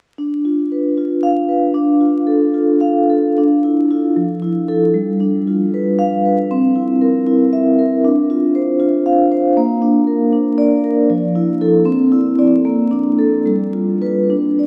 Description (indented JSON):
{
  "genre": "classical, contemporary piece for solo vibraphone",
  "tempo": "77 BPM (dotted quarters)",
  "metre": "6/8",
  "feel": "rubato",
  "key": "D minor",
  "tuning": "A4 = 440 Hz",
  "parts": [
    { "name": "vibraphone with soft mallets", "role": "solo", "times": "0.2-14.7 s", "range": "F3 to F5", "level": "-15 LUFS", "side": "equal", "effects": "none" }
  ],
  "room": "wet cathedral reverb, RT60 7.6 s",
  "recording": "vinyl crackle",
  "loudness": "-15 LUFS",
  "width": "mono",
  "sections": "0.2-3.4 A section; 3.4-14.7 B section",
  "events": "none",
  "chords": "0.2 Dm6; 1.7 F6/D; 3.4 Dmadd9; 4.2 Fmaj7; 4.9 G7; 6.5 C7; 8.0 Dm7; 9.6 Bb; 11.1 Fmaj7; 11.9 Cadd9; 12.7 Bbmaj7; 13.5 G7"
}